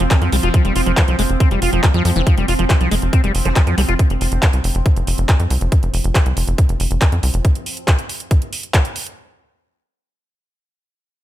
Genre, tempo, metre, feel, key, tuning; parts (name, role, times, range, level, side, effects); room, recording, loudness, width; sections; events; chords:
psychedelic trance; 139 BPM; 4/4; straight; A4 = 441 Hz
bubbling stepped-filter texture; sustained chords; 0.0-7.5 s; F3 to C4; -26 LUFS; right 1 dB; chorus, built-in reverb, sidechain pumping
liquid acid bass; riff; 0.0-3.9 s; E3 to F4; -21 LUFS; moving between left 4 dB and right 3 dB; chorus, auto-pan, sidechain pumping, ping-pong delay
tight sequencer bass; bass; 0.0-7.4 s; F1 to F2; -18 LUFS; equal
drum and bass drum kit; drums; 0.0-9.2 s; handclaps, hi-hat; -22 LUFS; equal; overdrive
electronic kick drum; drums; 0.1-8.8 s; -15 LUFS; equal
vowel-sweep wobble bass; second line; 3.5-3.6 s; C4; -32 LUFS; right 3 dB
little or no reverb; -14 LUFS; side -13 dB against mid
0.0-9.2 A section
drop 0.0-9.2
0.0 F5